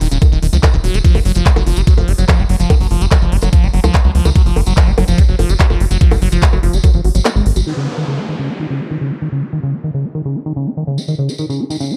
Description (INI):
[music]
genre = psychedelic trance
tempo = 145 BPM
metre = 4/4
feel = straight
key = Eb minor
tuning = A4 = 440 Hz
[part]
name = liquid acid bass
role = riff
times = 0.0-12.0 s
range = Db3 to Gb4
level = -22 LUFS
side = equal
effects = phaser, sidechain pumping, dub echo
[part]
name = tight sequencer bass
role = bass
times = 0.0-7.6 s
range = Eb1 to Db2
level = -16 LUFS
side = equal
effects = none
[part]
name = drum and bass drum kit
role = drums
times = 0.0-7.6 s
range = bongos, handclaps, hi-hat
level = -23 LUFS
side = equal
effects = none
[part]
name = tambourine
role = percussion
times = 0.1-7.6, 11.0-12.0 s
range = none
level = -32 LUFS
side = equal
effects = none
[part]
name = electronic kick drum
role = drums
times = 0.2-6.9 s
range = none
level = -13 LUFS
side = equal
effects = none
[part]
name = downlifter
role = sound effects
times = 7.7-11.0 s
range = none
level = -30 LUFS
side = equal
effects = none
[sound]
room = digital ambience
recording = dark, warm production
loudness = -14 LUFS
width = mono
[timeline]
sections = 0.0-7.7 A section; 7.7-12.0 B section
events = drop 0.0-7.7; kick drops out 7.3-7.7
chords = 0.0 Eb5; 1.0 Gb5; 7.7 Eb5